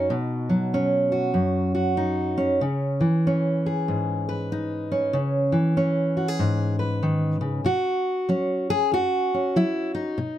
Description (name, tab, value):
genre	folk, solo fingerstyle acoustic guitar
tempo	95 BPM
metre	4/4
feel	swing 63% on 8ths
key	unclear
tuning	A4 = 442 Hz
part	fingerpicked steel-string acoustic guitar	solo	0.0-10.4 s	F#2 to B4	-21 LUFS	equal	none
room	light reverb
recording	close, detailed microphones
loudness	-21 LUFS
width	side -12 dB against mid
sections	0.0-7.7 A section; 7.7-10.4 B section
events	none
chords	0.0 Badd9; 2.6 C#madd9; 7.7 Badd9